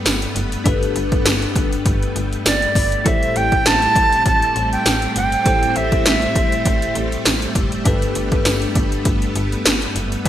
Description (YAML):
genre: 1980s-style pop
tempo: 100 BPM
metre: 4/4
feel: swing 55% on 16ths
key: G major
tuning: A4 = 440 Hz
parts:
  - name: bell-like tine electric piano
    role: accompaniment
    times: 0.0-10.3 s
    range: G2 to C5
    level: -24 LUFS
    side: left 3 dB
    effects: phaser
  - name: string machine, violins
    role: sustained chords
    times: 0.0-10.3 s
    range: G3 to C4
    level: -25 LUFS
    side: equal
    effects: ensemble chorus
  - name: slap-like FM bass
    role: bass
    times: 0.1-10.3 s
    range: F#1 to A1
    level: -24 LUFS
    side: equal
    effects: none
  - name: 80s electronic pad drums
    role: drums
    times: 0.1-10.3 s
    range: hi-hat, kick drum, snare drum, tambourine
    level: -18 LUFS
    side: equal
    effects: gated reverb
  - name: tambourine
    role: percussion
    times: 0.1-9.8 s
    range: none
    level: -32 LUFS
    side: right 4 dB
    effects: none
  - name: tenor recorder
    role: melody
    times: 2.5-7.0 s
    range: D5 to A5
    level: -18 LUFS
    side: right 2 dB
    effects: none
room: moderate lush hall reverb, RT60 2.1 s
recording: bright 1980s-style digital production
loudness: -15 LUFS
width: side -11 dB against mid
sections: 0.0-10.3 A section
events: none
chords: 0.0 Gadd9; 3.1 Am7; 7.9 Gadd9